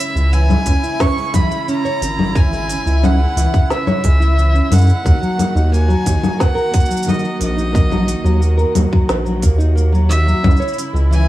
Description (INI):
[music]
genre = folktronica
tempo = 89 BPM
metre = 4/4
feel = straight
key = unclear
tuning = A4 = 440 Hz
[part]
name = rich violin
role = melody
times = 0.0-11.3 s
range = D#5 to C#6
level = -23 LUFS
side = equal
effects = digital delay
[part]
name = dark string quartet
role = sustained chords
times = 0.0-11.3 s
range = C#3 to F#4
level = -26 LUFS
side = right 2 dB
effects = none
[part]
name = nylon-string guitar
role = arpeggios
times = 0.0-11.3 s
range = D#3 to C#5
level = -22 LUFS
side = equal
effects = digital delay
[part]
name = organic electronic drum kit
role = drums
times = 0.0-11.3 s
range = congas, hi-hat, shaker, snare drum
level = -20 LUFS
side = left 2 dB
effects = none
[part]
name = round analog bass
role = bass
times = 0.2-11.3 s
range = G#1 to F#2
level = -14 LUFS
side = equal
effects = none
[part]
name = electronic kick drum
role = drums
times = 0.7-10.6 s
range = none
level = -15 LUFS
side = equal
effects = none
[sound]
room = little or no reverb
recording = none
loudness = -13 LUFS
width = side -15 dB against mid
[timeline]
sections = 0.0-11.3 A section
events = none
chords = 0.0 C#m; 5.1 D#m; 10.4 C#m